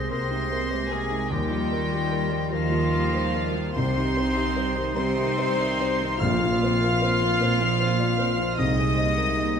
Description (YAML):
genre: cinematic, emotional film score for orchestra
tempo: 50 BPM (dotted quarters)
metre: 6/8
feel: rubato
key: Eb major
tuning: A4 = 440 Hz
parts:
  - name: rich studio violin section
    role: melody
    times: 0.0-9.6 s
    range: F5 to F6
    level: -32 LUFS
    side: left 2 dB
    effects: none
  - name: bright clarinet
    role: second line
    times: 0.0-9.6 s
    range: Eb4 to Ab4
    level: -33 LUFS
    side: equal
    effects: none
  - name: silver concert flute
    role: second line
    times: 0.0-9.6 s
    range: Bb6 to C7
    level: -33 LUFS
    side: left 2 dB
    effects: none
  - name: warm cor anglais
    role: second line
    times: 0.0-9.5 s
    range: F4 to F5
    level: -34 LUFS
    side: right 2 dB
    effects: none
  - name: warm studio violin section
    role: second line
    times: 0.0-9.6 s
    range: F4 to F5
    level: -33 LUFS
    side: left 2 dB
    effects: none
  - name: felt-muted upright piano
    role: accompaniment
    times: 0.0-9.6 s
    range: Bb1 to Eb5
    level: -31 LUFS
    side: left 1 dB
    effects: none
  - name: warm studio viola section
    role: accompaniment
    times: 0.0-9.6 s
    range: Eb3 to Eb4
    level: -32 LUFS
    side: right 1 dB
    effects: none
  - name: mellow French horn section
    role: sustained chords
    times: 0.0-9.6 s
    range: F3 to F4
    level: -31 LUFS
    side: left 2 dB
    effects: none
  - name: concert harp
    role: arpeggios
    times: 0.0-9.6 s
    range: Bb2 to F5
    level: -33 LUFS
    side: left 6 dB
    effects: none
  - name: warm studio double bass section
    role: bass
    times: 0.1-9.6 s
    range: Bb1 to Eb2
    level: -30 LUFS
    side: right 3 dB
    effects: none
  - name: warm symphonic cello section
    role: bass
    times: 0.1-9.6 s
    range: Bb2 to Eb3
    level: -31 LUFS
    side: right 3 dB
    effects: none
  - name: timpani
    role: percussion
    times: 6.2-7.4 s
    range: Bb2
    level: -34 LUFS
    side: left 1 dB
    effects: none
room: moderate recital hall reverb, RT60 1.3 s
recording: dark, warm production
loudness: -21 LUFS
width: side -7 dB against mid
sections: 0.0-9.6 A section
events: none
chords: 0.0 Abadd9/C; 1.3 Ebadd9; 3.8 Cm; 6.2 Bbsus2; 8.6 Abadd9/C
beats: 0.11 | 1.32 2.52 | 3.76 4.96 | 6.21 7.41 | 8.58